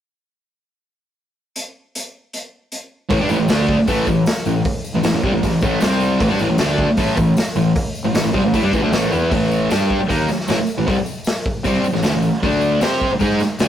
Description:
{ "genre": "garage rock duo or trio", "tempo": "154 BPM", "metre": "4/4", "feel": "straight", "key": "A minor", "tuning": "A4 = 440 Hz", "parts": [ { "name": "raw garage drum kit", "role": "drums", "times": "1.6-13.7 s", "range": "hi-hat, kick drum, snare drum", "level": "-22 LUFS", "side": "equal", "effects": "none" }, { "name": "fuzz guitar", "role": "riff", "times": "3.1-13.7 s", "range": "A2 to C5", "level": "-17 LUFS", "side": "equal", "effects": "distortion" }, { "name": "fuzz fingered electric bass", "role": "bass", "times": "3.1-13.7 s", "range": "A1 to C3", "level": "-22 LUFS", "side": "equal", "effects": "overdrive" }, { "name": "tambourine", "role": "percussion", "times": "3.3-13.7 s", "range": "none", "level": "-40 LUFS", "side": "left 4 dB", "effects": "none" } ], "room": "moderate stone room reverb, RT60 1.2 s", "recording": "rough rehearsal-room recording, warm saturation", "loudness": "-15 LUFS", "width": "side -10 dB against mid", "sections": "1.5-3.1 A section; 3.1-9.3 B section; 9.3-13.7 C section", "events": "none", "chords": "1.5 N.C.; 3.1 A5; 5.8 C5; 6.2 A5; 9.3 Am; 12.4 D5", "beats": "| 1.55 1.94 2.32 2.71 | 3.10 3.48 3.87 4.26 | 4.65 5.04 5.42 5.81 | 6.20 6.59 6.98 7.37 | 7.75 8.14 8.53 8.92 | 9.31 9.70 10.09 10.48 | 10.87 11.26 11.65 12.04 | 12.43 12.82 13.21 13.60" }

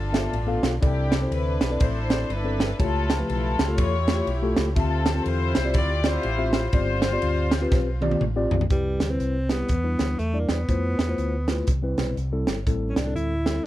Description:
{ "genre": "uptempo gospel", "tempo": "122 BPM", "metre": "4/4", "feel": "swing 61% on 8ths", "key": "C major", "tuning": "A4 = 443 Hz", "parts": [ { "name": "warm studio string section", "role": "melody", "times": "0.0-8.2 s", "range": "C4 to D5", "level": "-28 LUFS", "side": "left 3 dB", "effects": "none" }, { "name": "mellow tine electric piano", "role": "accompaniment", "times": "0.0-13.7 s", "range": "G2 to F5", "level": "-28 LUFS", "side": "left 2 dB", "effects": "slow stereo tremolo" }, { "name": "fingered electric bass", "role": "bass", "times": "0.0-13.6 s", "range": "G1 to F2", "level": "-26 LUFS", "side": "equal", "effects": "none" }, { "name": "crisp fusion drum kit", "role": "drums", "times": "0.1-13.6 s", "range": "hi-hat, kick drum, ride cymbal, snare drum, toms", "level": "-25 LUFS", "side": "right 1 dB", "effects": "none" }, { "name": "warm alto saxophone", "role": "melody", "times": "8.7-13.7 s", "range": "G3 to E4", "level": "-28 LUFS", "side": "equal", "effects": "none" } ], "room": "light reverb", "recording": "none", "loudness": "-21 LUFS", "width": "side -14 dB against mid", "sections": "0.0-8.7 A section; 8.7-13.7 B section", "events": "drum fill 7.7-8.7", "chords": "0.0 G13; 0.8 C69; 2.8 A7b13; 4.8 Dm11; 6.7 G7sus4; 8.7 Cmaj7; 9.7 Em7; 10.7 Fmaj7; 11.7 Cmaj7; 12.7 Am7", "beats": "0.33 | 0.83 1.32 1.81 2.30 | 2.79 3.29 3.78 4.27 | 4.76 5.26 5.75 6.24 | 6.74 7.23 7.72 8.21 | 8.71 9.20 9.70 10.19 | 10.69 11.18 11.68 12.17 | 12.67 13.16 13.66" }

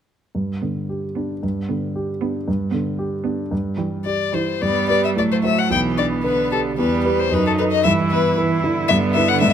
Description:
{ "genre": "quick classical-period movement for piano quartet", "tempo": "112 BPM", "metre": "2/4", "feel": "rubato", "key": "G major", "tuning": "A4 = 440 Hz", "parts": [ { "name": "dark grand piano", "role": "accompaniment", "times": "0.3-9.5 s", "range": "B1 to C5", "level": "-21 LUFS", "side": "right 1 dB", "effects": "none" }, { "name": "rich cello", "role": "second line", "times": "0.6-9.5 s", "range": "D3 to B3", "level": "-25 LUFS", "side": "right 7 dB", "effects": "none" }, { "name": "warm violin", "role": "melody", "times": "4.1-9.5 s", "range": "A4 to G5", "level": "-20 LUFS", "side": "left 8 dB", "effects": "none" }, { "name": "rich viola", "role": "accompaniment", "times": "4.6-9.5 s", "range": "A3 to E4", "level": "-24 LUFS", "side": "right 3 dB", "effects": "none" } ], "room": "moderate recital hall reverb, RT60 1.4 s", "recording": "close, detailed microphones", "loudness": "-18 LUFS", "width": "side -9 dB against mid", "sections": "0.3-4.6 A section; 4.6-9.5 B section", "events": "none", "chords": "0.3 G; 3.5 Cadd9/G; 4.6 G; 5.2 Am6; 5.7 G/B; 6.8 Em; 7.3 B7/F#; 7.8 Em/G", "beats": "| 0.34 0.89 | 1.43 1.95 | 2.47 2.99 | 3.52 4.05 | 4.61 5.16 | 5.70 6.24 | 6.78 7.31 | 7.84 8.37 | 8.89 9.41" }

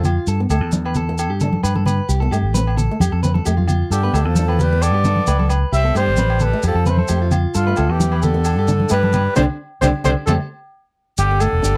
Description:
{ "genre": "highlife guitar band", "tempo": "132 BPM", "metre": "4/4", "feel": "straight", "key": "G mixolydian", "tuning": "A4 = 440 Hz", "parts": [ { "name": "breathy trumpet", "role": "melody", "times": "0.0, 3.9-11.8 s", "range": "F4 to E5", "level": "-23 LUFS", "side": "equal", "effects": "none" }, { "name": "raspy tenor saxophone", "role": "second line", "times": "0.0-0.1, 3.9-11.8 s", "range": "D3 to C4", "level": "-33 LUFS", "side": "equal", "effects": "none" }, { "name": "flamenco guitar", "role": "accompaniment", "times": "0.0-11.8 s", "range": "D3 to G4", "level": "-29 LUFS", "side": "equal", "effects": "none" }, { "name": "clean electric guitar", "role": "arpeggios", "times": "0.0-11.8 s", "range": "D4 to C5", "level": "-28 LUFS", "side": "equal", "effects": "slapback echo" }, { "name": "fingered electric bass", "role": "bass", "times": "0.0-11.8 s", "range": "E1 to G2", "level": "-20 LUFS", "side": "equal", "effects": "none" }, { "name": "congas", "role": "percussion", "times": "0.0-10.4 s", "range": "none", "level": "-24 LUFS", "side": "equal", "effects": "none" }, { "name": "maracas", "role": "percussion", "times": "0.0-11.8 s", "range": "none", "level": "-32 LUFS", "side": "equal", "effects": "none" }, { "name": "agogo bells", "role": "percussion", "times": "0.1-11.5 s", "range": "none", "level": "-32 LUFS", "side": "equal", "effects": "none" } ], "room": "little or no reverb", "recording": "dry, close 1970s-style studio recording", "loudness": "-18 LUFS", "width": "mono", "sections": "0.0-11.2 A section", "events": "band accent 9.4-11.2", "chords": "0.3 Gadd9; 2.1 C5; 3.0 Fadd9; 3.9 Gadd9; 5.7 C5; 6.6 Fadd9; 7.5 Gadd9; 9.4 Csus2; 10.3 N.C.; 11.2 Gadd9", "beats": "| 0.28 0.73 1.19 1.64 | 2.09 2.55 3.00 3.46 | 3.91 4.37 4.82 5.27 | 5.73 6.18 6.64 7.09 | 7.55 8.00 8.46 8.91 | 9.37 9.82 10.28 10.73 | 11.18 11.64" }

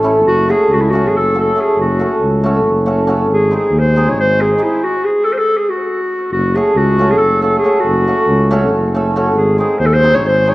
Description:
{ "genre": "balkan folk, Balkan wedding band", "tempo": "277 BPM (eighths)", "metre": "7/8", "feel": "straight", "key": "F# dorian sharp4", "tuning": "A4 = 437 Hz", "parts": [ { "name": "cimbalom", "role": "accompaniment", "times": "0.0-10.5 s", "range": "G#3 to A4", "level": "-16 LUFS", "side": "equal", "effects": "none" }, { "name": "mellow tuba", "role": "bass", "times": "0.0-10.5 s", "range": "F#1 to D#2", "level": "-16 LUFS", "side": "equal", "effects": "none" }, { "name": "mellow clarinet", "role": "melody", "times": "0.3-10.5 s", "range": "E4 to C#5", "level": "-14 LUFS", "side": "equal", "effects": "tape echo" } ], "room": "moderate recital hall reverb, RT60 1.5 s", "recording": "worn, warbling old tape, cassette tape, warbly pitch drift", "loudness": "-11 LUFS", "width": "side -18 dB against mid", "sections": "0.0-6.3 A section; 6.3-10.5 A section", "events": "stop 4.8-6.3", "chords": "0.3 F#m; 3.3 G#; 4.8 N.C.; 6.3 F#m; 9.4 G#", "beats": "0.04 | 0.25 0.47 0.69 0.90 1.12 1.34 1.55 | 1.77 1.99 2.20 2.42 2.64 2.85 3.07 | 3.29 3.50 3.72 3.94 4.15 4.37 4.59 | 4.80 5.02 5.24 5.45 5.67 5.88 6.10 | 6.32 6.53 6.75 6.97 7.18 7.40 7.62 | 7.83 8.05 8.27 8.48 8.70 8.92 9.13 | 9.35 9.57 9.79 10.00 10.22 10.44" }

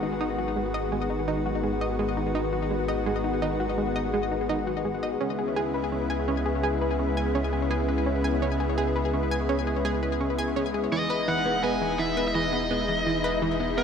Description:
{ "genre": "ambient, sequencer-driven space music", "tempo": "84 BPM", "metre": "4/4", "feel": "straight", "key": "G# minor", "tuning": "A4 = 438 Hz", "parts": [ { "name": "lush unison pad", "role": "sustained chords", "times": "0.0-13.8 s", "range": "A#2 to F#4", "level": "-27 LUFS", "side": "left 2 dB", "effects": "chorus" }, { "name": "analog pluck", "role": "riff", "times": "0.0-13.8 s", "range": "E3 to G#5", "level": "-30 LUFS", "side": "equal", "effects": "chorus, ping-pong delay" }, { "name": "warm sub bass", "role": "bass", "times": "0.0-13.8 s", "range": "E1 to C#2", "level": "-32 LUFS", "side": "right 1 dB", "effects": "tube saturation" }, { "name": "biting lead guitar", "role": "melody", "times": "10.9-13.8 s", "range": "B4 to G#5", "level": "-28 LUFS", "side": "equal", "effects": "overdrive, ping-pong delay" } ], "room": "wet echo chamber reverb, RT60 2.3 s", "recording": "echo-heavy mix", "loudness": "-24 LUFS", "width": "side -7 dB against mid", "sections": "0.0-13.8 A section", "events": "none", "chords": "0.0 G#m7; 5.2 C#m7; 10.9 Emaj7", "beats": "0.21 0.92 1.64 | 2.35 3.06 3.78 4.49 | 5.21 5.92 6.63 7.35 | 8.06 8.78 9.49 10.21 | 10.92 11.63 12.35 13.06 | 13.78" }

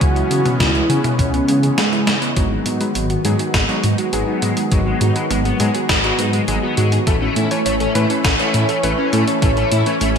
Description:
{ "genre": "synthwave", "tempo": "102 BPM", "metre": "4/4", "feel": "straight", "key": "G# phrygian", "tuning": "A4 = 440 Hz", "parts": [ { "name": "warm velvety synth lead", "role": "melody", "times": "0.0-2.2 s", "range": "G#3 to F#4", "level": "-20 LUFS", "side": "equal", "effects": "chorus, tremolo, cassette tape, ping-pong delay" }, { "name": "lush unison pad", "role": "sustained chords", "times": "0.0-10.2 s", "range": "C#3 to F#4", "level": "-23 LUFS", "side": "equal", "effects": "chorus, sidechain pumping" }, { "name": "thumb-piano-like synth pluck", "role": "arpeggios", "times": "0.0-10.2 s", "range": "F#3 to C#5", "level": "-23 LUFS", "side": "right 2 dB", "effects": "chorus, ping-pong delay" }, { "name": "dark detuned saw bass", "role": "bass", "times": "0.0-10.2 s", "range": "G#1 to C#3", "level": "-20 LUFS", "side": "equal", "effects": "none" }, { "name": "electronic kick drum", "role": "drums", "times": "0.0-9.5 s", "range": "none", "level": "-18 LUFS", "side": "equal", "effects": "studio ambience" }, { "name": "gated 80s digital drum machine", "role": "drums", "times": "0.0-10.2 s", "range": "hi-hat, snare drum, toms", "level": "-22 LUFS", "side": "equal", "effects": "gated reverb, gated reverb snare, high-pass filter on hats, studio ambience, high-pass filter on snare, high-pass filter on toms" }, { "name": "crunchy overdriven guitar", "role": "riff", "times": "2.4-10.2 s", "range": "G#3 to A4", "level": "-26 LUFS", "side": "left 4 dB", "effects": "ensemble chorus, low-pass filter, ping-pong delay" }, { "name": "warm electric grand piano", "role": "stabs", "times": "2.4-9.9 s", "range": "E3 to C#5", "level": "-24 LUFS", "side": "left 2 dB", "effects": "low-pass filter, ping-pong delay" } ], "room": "wet lush hall reverb, RT60 1.7 s", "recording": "bright 1980s-style digital production", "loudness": "-15 LUFS", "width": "side -6 dB against mid", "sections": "0.0-2.4 A section; 2.4-10.2 B section", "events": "drum fill 2.1; filter sweep on analog synth pad 2.4-10.2; filter sweep on overdriven electric guitar 2.4-10.2", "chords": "0.0 C#m7; 2.4 G#m7; 7.1 A", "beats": "| 0.01 0.60 1.19 1.78 | 2.37 2.95 3.54 4.13 | 4.72 5.31 5.89 6.48 | 7.07 7.66 8.25 8.84 | 9.42 10.01" }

